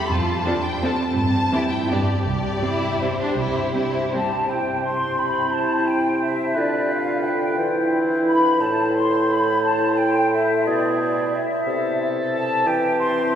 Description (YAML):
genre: classical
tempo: 150-192 BPM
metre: 3/4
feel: rubato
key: C major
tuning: A4 = 440 Hz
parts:
  - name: rich chamber violin section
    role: melody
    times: 0.0-4.3 s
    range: C5 to A5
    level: -28 LUFS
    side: left 2 dB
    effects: none
  - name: warm symphonic cello section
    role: bass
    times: 0.0-4.3 s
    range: C4 to G4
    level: -27 LUFS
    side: right 2 dB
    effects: none
  - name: clear chamber double bass section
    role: bass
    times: 0.1-3.7 s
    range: C2 to G2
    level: -27 LUFS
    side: right 1 dB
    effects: none
  - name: rich chamber violin section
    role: second line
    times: 0.5-4.5 s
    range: C4 to A4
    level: -30 LUFS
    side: left 1 dB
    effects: none
  - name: rich chamber viola section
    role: accompaniment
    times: 0.5-4.2 s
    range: E3 to C4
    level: -30 LUFS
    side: equal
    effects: none
  - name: bright large flute ensemble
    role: second line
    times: 4.1-13.3 s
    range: D5 to C6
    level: -22 LUFS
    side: left 2 dB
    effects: none
  - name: warm clarinet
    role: second line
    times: 4.5-13.4 s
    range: C4 to F4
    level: -26 LUFS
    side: right 1 dB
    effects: none
  - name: warm oboe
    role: second line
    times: 4.5-13.4 s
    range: G4 to C5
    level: -27 LUFS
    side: right 1 dB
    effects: none
  - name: mellow bassoon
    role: accompaniment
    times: 4.5-13.4 s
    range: A2 to E3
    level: -23 LUFS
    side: equal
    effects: none
room: wet cathedral reverb, RT60 6.3 s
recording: recorded in a church or concert hall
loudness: -18 LUFS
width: side -9 dB against mid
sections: 0.0-4.5 A section; 4.5-13.4 B section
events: none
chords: 0.1 Dm7/F; 1.2 C/G; 1.9 G5; 2.3 C; 6.6 G7/D; 7.6 C/E; 8.6 Am; 10.7 E7/B; 11.7 Am/C; 12.7 C/E